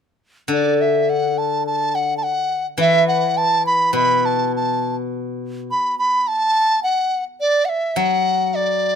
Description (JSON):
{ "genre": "chinese traditional, Chinese chamber ensemble", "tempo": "104 BPM", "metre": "2/4", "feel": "straight", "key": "D gong mode", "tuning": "A4 = 440 Hz", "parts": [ { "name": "mellow large dizi", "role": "melody", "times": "0.5-9.0 s", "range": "D5 to B5", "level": "-17 LUFS", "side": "right 1 dB", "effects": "none" }, { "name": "steel-string zither", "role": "accompaniment", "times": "0.5-5.7, 8.0-9.0 s", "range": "B2 to F#3", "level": "-21 LUFS", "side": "left 4 dB", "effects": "none" } ], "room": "light reverb", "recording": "close, detailed microphones", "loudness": "-16 LUFS", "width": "side -7 dB against mid", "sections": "0.5-9.0 A section", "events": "none", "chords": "none" }